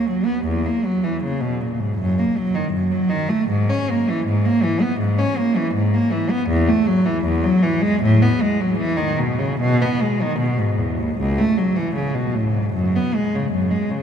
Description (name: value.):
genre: classical, baroque-style suite movement for unaccompanied cello.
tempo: 78 BPM.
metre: 4/4.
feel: uneven beats, rubato.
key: unclear.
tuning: A4 = 440 Hz.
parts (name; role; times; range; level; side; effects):
rich cello; solo; 0.0-14.0 s; C#2 to C#4; -17 LUFS; equal; none.
room: wet cathedral reverb, RT60 6.6 s.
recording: in a vast, echoing space.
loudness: -17 LUFS.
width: side -8 dB against mid.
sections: 0.0-14.0 A section.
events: none.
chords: none.